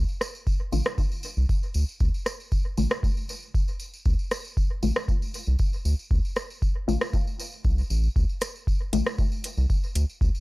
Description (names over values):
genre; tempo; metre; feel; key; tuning
dub techno; 117 BPM; 4/4; straight; D minor; A4 = 440 Hz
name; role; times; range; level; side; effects
round analog bass; bass; 0.0-10.3 s; A1 to D2; -23 LUFS; equal; tube saturation, sidechain pumping
tambourine; percussion; 0.1-10.4 s; none; -40 LUFS; right 1 dB; none
booming analog drum machine; drums; 0.2-10.1 s; hi-hat, rim click; -28 LUFS; equal; dub echo
electronic kick drum; drums; 0.5-10.3 s; none; -25 LUFS; equal; none
filtered dub chord stab; stabs; 0.7-9.1 s; D3 to F4; -30 LUFS; left 4 dB; phaser, dub echo
room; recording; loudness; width
little or no reverb; dry, gritty hardware recording; -24 LUFS; side -20 dB against mid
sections
0.0-10.4 A section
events
none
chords
0.0 Dm